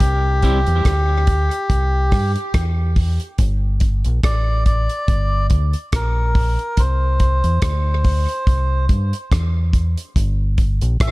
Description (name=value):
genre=dub reggae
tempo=71 BPM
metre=4/4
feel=swing 56% on 16ths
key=unclear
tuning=A4 = 443 Hz
part: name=melodica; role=melody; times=0.0-11.1 s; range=G4 to E5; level=-23 LUFS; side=equal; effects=tape echo
part: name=deep dub fingered electric bass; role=bass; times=0.0-11.1 s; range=G1 to G2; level=-18 LUFS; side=equal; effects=none
part: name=damped 70s drum kit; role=drums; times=0.0-11.1 s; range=hi-hat, kick drum, rim click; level=-18 LUFS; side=equal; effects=none
part: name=electric guitar at the edge of break-up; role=accompaniment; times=0.4-0.6 s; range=G3 to G4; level=-27 LUFS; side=right 1 dB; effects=harmonic tremolo, high-pass filter, tape echo
room=small room ambience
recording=dark, warm production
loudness=-16 LUFS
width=side -21 dB against mid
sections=0.0-11.1 A section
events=break 0.0-10.2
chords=0.0 C; 3.4 Gm; 6.8 C; 10.2 Gm